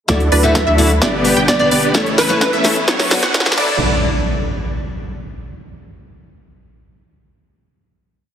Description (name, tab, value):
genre	EDM, festival progressive house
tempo	129 BPM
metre	4/4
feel	straight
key	D major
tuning	A4 = 440 Hz
part	picked steel-string acoustic guitar	accompaniment	0.1-3.8 s	F#3 to D5	-21 LUFS	left 3 dB	sidechain pumping, tape echo
part	rich symphonic string section	sustained chords	0.1-3.8 s	C#3 to G4	-26 LUFS	left 2 dB	sidechain pumping, low-pass filter
part	wide unison pluck	arpeggios	0.1-3.8 s	B4 to G5	-22 LUFS	right 1 dB	phaser, sidechain pumping, tape echo
part	dense compressed supersaw	riff	0.1-3.8 s	A3 to G5	-20 LUFS	equal	cassette tape, sidechain pumping, low-pass filter, tape echo
part	saturated sub bass	bass	0.1-3.8 s	G1 to D2	-20 LUFS	equal	sidechain pumping
part	big-room dance drum kit	drums	0.1-3.7 s	crash cymbal, hi-hat, snare drum	-19 LUFS	equal	none
part	electronic kick drum	drums	0.1-3.7 s	none	-21 LUFS	equal	high-pass filter on kick, high-pass filter on room
part	riser and impact	sound effects	1.9-5.4 s	none	-24 LUFS	equal	none
part	plucky unison lead	melody	0.3-2.5 s	B4 to E5	-19 LUFS	right 1 dB	cassette tape, tape echo
room	moderate lush hall reverb, RT60 2.3 s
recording	heavily compressed radio sound, multiband compression, high-pass filter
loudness	-12 LUFS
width	side -9 dB against mid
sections	0.1-3.8 build; 3.8-5.7 final hit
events	build-up 0.1-3.8; drum fill 0.1-3.8; filter sweep on supersaw synth 0.1-3.8; filter sweep 0.1-3.8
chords	0.1 Dadd9; 1.0 G; 1.9 A; 2.9 Bm; 3.6 Dadd9; 3.8 N.C.